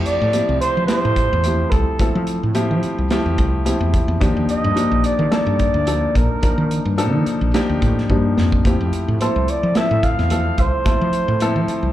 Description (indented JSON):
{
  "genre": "electric jazz fusion",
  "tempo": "108 BPM",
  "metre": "4/4",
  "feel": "swing 55% on 16ths",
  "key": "F major",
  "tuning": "A4 = 440 Hz",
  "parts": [
    { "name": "dark grand piano", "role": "accompaniment", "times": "0.0-11.9 s", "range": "F3 to A5", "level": "-21 LUFS", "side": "left 2 dB", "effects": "slapback echo" },
    { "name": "woody fretless electric bass", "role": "bass", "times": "0.0-11.9 s", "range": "Bb1 to F3", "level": "-20 LUFS", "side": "equal", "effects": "none" },
    { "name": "trumpet with bucket mute", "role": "melody", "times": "0.1-11.9 s", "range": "A4 to F5", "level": "-22 LUFS", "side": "right 1 dB", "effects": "slapback echo" },
    { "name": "modern studio drum kit", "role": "drums", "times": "0.1-11.8 s", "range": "hi-hat, kick drum, snare drum", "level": "-22 LUFS", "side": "equal", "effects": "none" }
  ],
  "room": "studio reverb",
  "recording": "live gig heard through the venue's PA, club reverb",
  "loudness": "-16 LUFS",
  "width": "side -13 dB against mid",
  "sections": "0.0-11.9 A section",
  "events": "drum fill 8.1-8.6; grand piano fill 11.4-11.9",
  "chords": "0.0 Fmaj9; 4.2 Ebmaj9; 8.6 Fmaj9",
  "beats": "0.33 0.89 1.44 | 2.00 2.55 3.11 3.66 | 4.22 4.77 5.32 5.88 | 6.43 6.99 7.54 8.09 | 8.65 9.20 9.75 10.31 | 10.86 11.41"
}